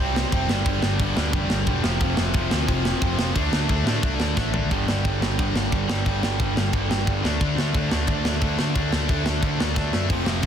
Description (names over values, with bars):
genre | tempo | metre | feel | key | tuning
punk rock | 178 BPM | 4/4 | straight | unclear | A4 = 440 Hz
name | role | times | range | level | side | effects
cranked stack guitar | riff | 0.0-10.5 s | F2 to D4 | -29 LUFS | right 15 dB | overdrive
distorted electric guitar | riff | 0.0-10.5 s | F2 to D4 | -28 LUFS | left 12 dB | distortion
heavy high-gain guitar | riff | 0.0-10.5 s | F2 to D4 | -30 LUFS | left 2 dB | distortion
overdriven picked electric bass | bass | 0.0-10.5 s | E1 to A2 | -26 LUFS | equal | none
tight metal drum kit | drums | 0.2-10.5 s | crash cymbal, kick drum, snare drum, toms | -25 LUFS | equal | soft clipping on kick
room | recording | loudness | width
little or no reverb | dense, heavily limited modern master | -20 LUFS | side -8 dB against mid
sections
0.0-4.7 A section; 4.7-10.5 B section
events
drum fill 4.4-4.7, 9.8-10.1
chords
0.5 G5; 1.8 F5; 3.4 D5; 4.7 G5; 7.2 D5